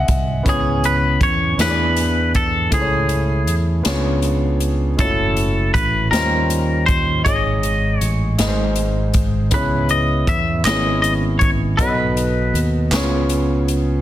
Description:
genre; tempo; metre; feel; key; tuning
slow gospel; 53 BPM (dotted quarters); 6/8; straight; C# minor; A4 = 440 Hz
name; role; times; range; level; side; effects
warm concert grand piano; accompaniment; 0.0-14.0 s; G#2 to G#5; -22 LUFS; equal; none
fingered electric bass; bass; 0.0-14.0 s; F#1 to E2; -20 LUFS; equal; none
swinging big-band drum kit; drums; 0.1-13.9 s; hi-hat, kick drum, snare drum; -22 LUFS; equal; none
twangy electric guitar; melody; 0.5-12.6 s; G#4 to E5; -20 LUFS; left 1 dB; wide subtle chorus, slapback echo
group handclap; percussion; 10.6-13.3 s; none; -25 LUFS; right 4 dB; none
room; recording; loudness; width
light reverb, small room ambience; dense, heavily limited modern master; -15 LUFS; side -13 dB against mid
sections
0.5-14.0 A section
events
none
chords
0.5 C#m7; 1.6 E7; 2.7 Amaj7/C#; 3.9 C#7b9; 5.0 F#m7; 6.1 D#13; 7.3 G#sus4; 8.4 G#; 9.5 C#m7; 11.8 B7; 12.9 C#7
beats
| 0.46 1.59 | 2.72 3.86 | 4.99 6.12 | 7.25 8.39 | 9.52 10.65 | 11.79 12.92

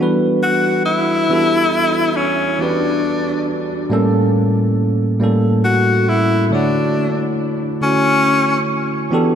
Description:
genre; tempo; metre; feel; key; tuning
R&B; 46 BPM (dotted quarters); 6/8; straight; unclear; A4 = 440 Hz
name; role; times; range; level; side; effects
bell-like tine electric piano; accompaniment; 0.0-9.4 s; A2 to E5; -16 LUFS; right 1 dB; lush chorus
breathy tenor saxophone; melody; 0.4-8.8 s; C#4 to F#4; -17 LUFS; left 2 dB; diffuse ambient delay
room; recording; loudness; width
wet church reverb, RT60 3.8 s; dreamy mix soaked in reverb; -14 LUFS; side -8 dB against mid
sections
0.0-9.4 A section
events
none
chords
0.0 Em11; 3.9 A7b9; 6.5 Dmaj9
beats
| 1.29 2.59 | 3.90 5.20 | 6.51 7.81 | 9.12

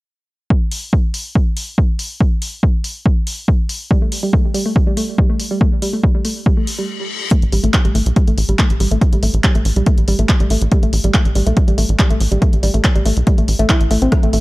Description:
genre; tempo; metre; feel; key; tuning
driving peak-time techno; 141 BPM; 4/4; straight; unclear; A4 = 440 Hz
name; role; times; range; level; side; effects
electronic kick drum; drums; 0.5-14.2 s; none; -14 LUFS; equal; overdrive
punchy analog drum machine; drums; 0.7-14.4 s; handclaps, hi-hat, rim click; -23 LUFS; equal; overdrive
woody wave-folded pluck; riff; 3.9-14.4 s; G3 to E4; -21 LUFS; equal; chorus, overdrive, sidechain pumping, tape echo
reverse cymbal; sound effects; 6.7-7.3 s; none; -26 LUFS; left 7 dB; none
tight sequencer bass; bass; 7.4-14.4 s; A1 to B1; -16 LUFS; equal; sidechain pumping
room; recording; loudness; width
digital ambience; dry, gritty hardware recording, transformer saturation; -13 LUFS; side -20 dB against mid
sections
0.5-7.3 A section; 7.3-14.4 B section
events
reverse cymbal 6.7-7.3; stop 6.9-7.3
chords
0.5 Gsus2; 7.3 N.C.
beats
| 0.50 0.93 1.35 1.78 | 2.21 2.63 3.06 3.48 | 3.91 4.33 4.76 5.18 | 5.61 6.04 6.46 6.89 | 7.31 7.74 8.16 8.59 | 9.01 9.44 9.87 10.29 | 10.72 11.14 11.57 11.99 | 12.42 12.84 13.27 13.70 | 14.12

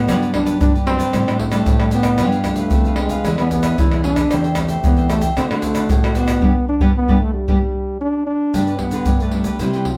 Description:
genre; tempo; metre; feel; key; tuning
samba and choro; 114 BPM; 4/4; straight; G major; A4 = 438 Hz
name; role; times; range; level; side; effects
mellow trombone; melody; 0.0-10.0 s; F#3 to E4; -22 LUFS; equal; plate reverb
cavaquinho; accompaniment; 0.0-9.9 s; D4 to G5; -31 LUFS; equal; none
nylon-string guitar; accompaniment; 0.0-10.0 s; G2 to G#4; -27 LUFS; equal; none
nylon-string guitar; bass; 0.0-10.0 s; E2 to G3; -24 LUFS; equal; none
egg shaker, surdo, pandeiro and tamborim; percussion; 0.1-10.0 s; none; -22 LUFS; equal; none
room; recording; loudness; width
wet studio reverb, RT60 0.7 s; heard from further back in the room; -17 LUFS; mono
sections
0.0-8.5 A section; 8.5-10.0 B section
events
band accent 6.4-8.5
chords
0.1 Gmaj7; 1.1 D7sus4/A; 2.2 G7; 3.3 E7; 4.3 Am7/E; 5.4 D7; 6.4 G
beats
| 0.08 0.61 1.14 1.67 | 2.20 2.73 3.25 3.78 | 4.31 4.84 5.37 5.90 | 6.42 6.96 7.48 8.01 | 8.54 9.07 9.60

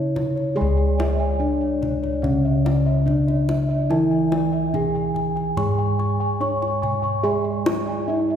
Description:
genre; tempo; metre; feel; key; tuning
Javanese gamelan; 72 BPM; 4/4; straight; unclear; A4 = 440 Hz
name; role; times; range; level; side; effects
gamelan-type bronze metallophone; melody; 0.0-8.4 s; C#4 to C#5; -25 LUFS; left 1 dB; none
gamelan-type bronze metallophone; accompaniment; 0.0-8.4 s; C#3 to G#3-30c; -24 LUFS; right 1 dB; none
gamelan-type bossed gongs; arpeggios; 0.0-8.4 s; C#5 to C#6; -28 LUFS; left 2 dB; none
gamelan-type bossed gongs; bass; 0.0-8.4 s; C#2 to G#4-30c; -25 LUFS; equal; none
kendang; percussion; 0.2-7.9 s; none; -30 LUFS; left 2 dB; none
gamelan-type bronze metallophone; arpeggios; 0.6-8.4 s; C#5 to C#6; -31 LUFS; right 3 dB; none
room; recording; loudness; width
wet concert hall reverb, RT60 2.0 s; heard from further back in the room; -19 LUFS; side -9 dB against mid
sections
0.6-8.4 A section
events
none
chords
none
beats
| 0.57 1.41 2.24 3.07 | 3.91 4.74 5.57 6.41 | 7.24 8.08

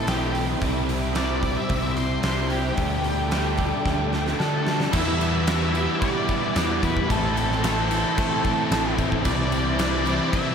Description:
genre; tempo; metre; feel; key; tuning
rock, shoegaze and dream pop; 111 BPM; 4/4; straight; E minor; A4 = 438 Hz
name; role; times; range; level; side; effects
octave-fuzz lead guitar; melody; 0.0-10.5 s; G4 to E5; -29 LUFS; left 1 dB; distortion, diffuse ambient delay
phased string machine; sustained chords; 0.0-10.5 s; G4 to D6; -33 LUFS; right 1 dB; ensemble chorus, phaser
crunchy overdriven guitar; riff; 0.0-10.5 s; A2 to E4; -28 LUFS; right 8 dB; reverse reverb
overdriven semi-hollow guitar; riff; 0.0-10.5 s; A2 to E4; -28 LUFS; left 8 dB; analog chorus
picked electric bass; bass; 0.1-10.2 s; A1 to D3; -27 LUFS; equal; none
huge arena drum kit; drums; 0.1-10.5 s; crash cymbal, hi-hat, kick drum, snare drum; -27 LUFS; equal; none
distorted electric guitar; riff; 4.9-10.5 s; A2 to E4; -30 LUFS; equal; distortion
tambourine; percussion; 4.9-10.4 s; none; -45 LUFS; right 10 dB; none
room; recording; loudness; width
moderate lush hall reverb, RT60 1.6 s; dreamy mix soaked in reverb; -21 LUFS; side -7 dB against mid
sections
0.0-4.9 A section; 4.9-10.5 B section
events
drum fill 3.9-4.9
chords
0.0 Am7; 0.6 Cadd9; 2.8 Dsus4; 4.9 Em7; 7.1 Am7; 9.2 Cadd9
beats
0.08 | 0.62 1.16 1.70 2.24 | 2.78 3.32 3.86 4.40 | 4.94 5.48 6.02 6.55 | 7.09 7.63 8.17 8.71 | 9.25 9.79 10.33

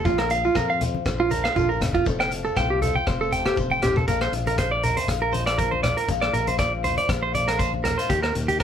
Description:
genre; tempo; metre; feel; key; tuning
highlife guitar band; 119 BPM; 4/4; swing 54% on 16ths; Bb major; A4 = 436 Hz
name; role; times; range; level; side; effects
flamenco guitar; accompaniment; 0.0-8.6 s; Bb2 to C5; -30 LUFS; left 8 dB; none
clean electric guitar; arpeggios; 0.0-8.6 s; F4 to G5; -23 LUFS; right 3 dB; none
fingered electric bass; bass; 0.1-8.6 s; F1 to F2; -29 LUFS; left 1 dB; none
vintage drum kit; drums; 0.1-8.6 s; hi-hat, kick drum, rim click; -28 LUFS; left 1 dB; none
shekere; percussion; 0.1-8.6 s; none; -35 LUFS; left 1 dB; none
congas; percussion; 0.8-8.6 s; none; -30 LUFS; left 2 dB; none
room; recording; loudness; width
moderate small room reverb, RT60 0.6 s; band playing live in one room; -20 LUFS; side -8 dB against mid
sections
0.0-4.1 A section; 4.1-8.6 B section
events
drum fill 3.4-4.1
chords
0.1 Bb; 2.1 Fadd9; 4.1 Bbadd9; 8.1 Eb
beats
| 0.06 0.56 1.06 1.56 | 2.07 2.57 3.07 3.57 | 4.08 4.58 5.08 5.58 | 6.09 6.59 7.09 7.60 | 8.10 8.61

